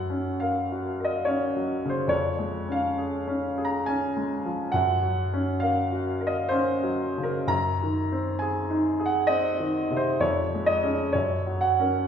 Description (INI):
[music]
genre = classical, romantic nocturne for solo piano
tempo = 67 BPM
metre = 3/4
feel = uneven beats, rubato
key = Db major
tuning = A4 = 442 Hz
[part]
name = clear concert grand piano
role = solo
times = 0.0-12.1 s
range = F2 to Bb5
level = -24 LUFS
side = equal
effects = none
[sound]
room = wet recital hall reverb, RT60 1.5 s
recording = heard from further back in the room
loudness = -24 LUFS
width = side -8 dB against mid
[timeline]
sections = 0.0-12.1 A section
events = none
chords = 0.0 Gb; 2.1 Db/F; 4.8 Gb; 7.5 Ab7/Gb; 10.2 Db/F; 11.1 Gb